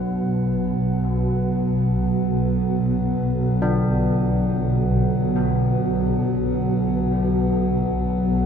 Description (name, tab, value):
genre	dark ambient drone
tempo	free time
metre	none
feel	none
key	B minor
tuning	A4 = 444 Hz
part	dark analog pad	sustained chords	0.0-8.5 s	F#3 to F#5	-22 LUFS	right 2 dB	chorus
part	old church bells	arpeggios	0.0-8.5 s	B3 to D4	-31 LUFS	left 1 dB	tape echo
part	swarming drone	drone	0.0-8.5 s	B1 to B2	-22 LUFS	left 1 dB	built-in reverb, analog chorus
room	wet cathedral reverb, RT60 5.2 s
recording	dreamy mix soaked in reverb, cassette tape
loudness	-19 LUFS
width	side -7 dB against mid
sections	0.0-8.5 A section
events	filter sweep on synth drone 0.0-8.5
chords	0.0 B5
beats	free time